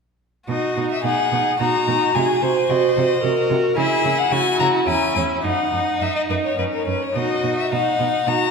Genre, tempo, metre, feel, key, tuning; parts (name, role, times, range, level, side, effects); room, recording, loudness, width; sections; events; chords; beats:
quick classical-period movement for string quartet; 108 BPM; 3/4; rubato; B major; A4 = 436 Hz
rich violin; melody; 0.5-8.5 s; A#4 to A#5; -22 LUFS; left 6 dB
warm violin; second line; 0.5-8.5 s; D#4 to B#4; -22 LUFS; left 1 dB
rich viola; accompaniment; 0.5-8.5 s; C#4 to F#4; -24 LUFS; right 4 dB
rich cello; bass; 0.5-8.3 s; E2 to C#3; -26 LUFS; right 6 dB
wet concert hall reverb, RT60 2.0 s; minimal, uncompressed stereo recording; -17 LUFS; side -5 dB against mid
0.5-8.5 A section
0.5 B; 2.2 G#7/B#; 3.8 C#m; 5.4 C#sus4/F# (rootless); 6.6 F#5; 7.2 B
| 0.48 1.04 1.60 | 2.15 2.70 3.23 | 3.77 4.32 4.87 | 5.44 6.01 6.58 | 7.15 7.72 8.27